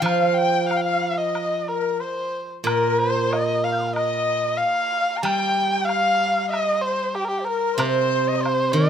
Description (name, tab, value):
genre	chinese traditional, Chinese chamber ensemble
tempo	93 BPM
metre	4/4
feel	rubato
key	C yu mode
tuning	A4 = 440 Hz
part	dark erhu	melody	0.0-8.9 s	G4 to Bb5	-23 LUFS	right 1 dB	none
part	steel-string zither	accompaniment	0.0-8.9 s	Bb2 to G3	-24 LUFS	right 3 dB	none
part	dizi	second line	0.1-8.8 s	Bb4 to G6	-25 LUFS	left 6 dB	none
part	woodblock	percussion	0.1-8.6 s	none	-30 LUFS	equal	none
room	light reverb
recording	close, detailed microphones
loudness	-20 LUFS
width	side -8 dB against mid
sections	0.0-2.7 A section; 2.7-8.9 B section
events	none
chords	none